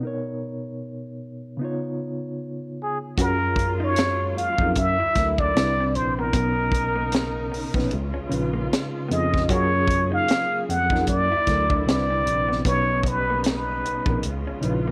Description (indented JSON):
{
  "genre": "R&B, neo-soul",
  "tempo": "76 BPM",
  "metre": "4/4",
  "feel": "swing 59% on 16ths",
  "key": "F# major",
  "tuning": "A4 = 440 Hz",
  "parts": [
    { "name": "reed electric piano", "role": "accompaniment", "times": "0.0-14.9 s", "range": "B2 to C#5", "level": "-31 LUFS", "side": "equal", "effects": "overdrive, fast tremolo" },
    { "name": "trumpet with plunger mute", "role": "melody", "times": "2.8-14.2 s", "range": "G#4 to F#5", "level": "-26 LUFS", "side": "equal", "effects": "none" },
    { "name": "electric guitar through a small old amp", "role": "second line", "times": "3.2-14.9 s", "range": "A#3 to F#4", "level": "-37 LUFS", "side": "equal", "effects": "none" },
    { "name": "dark studio string section", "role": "sustained chords", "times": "3.2-14.9 s", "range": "C#3 to A#4", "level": "-37 LUFS", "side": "equal", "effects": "none" },
    { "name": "tine electric piano", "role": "bass", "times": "3.2-14.9 s", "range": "A#1 to F#2", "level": "-30 LUFS", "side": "equal", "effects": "tube saturation" },
    { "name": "tight funk drum kit", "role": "drums", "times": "3.2-14.8 s", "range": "hi-hat, kick drum, snare drum", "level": "-28 LUFS", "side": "equal", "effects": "none" }
  ],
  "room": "light reverb, studio reverb",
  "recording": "none",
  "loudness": "-23 LUFS",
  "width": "mono",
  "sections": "0.0-3.2 A section; 3.2-14.9 B section",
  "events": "none",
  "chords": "0.0 Bmaj9; 1.6 C#7; 3.2 F#maj9; 4.8 F#7alt; 5.5 Cmaj9; 6.3 Bmaj9; 7.9 C#7; 9.5 F#maj9; 11.1 F#7alt; 11.9 Cmaj9; 12.7 Bmaj9; 14.2 C#7"
}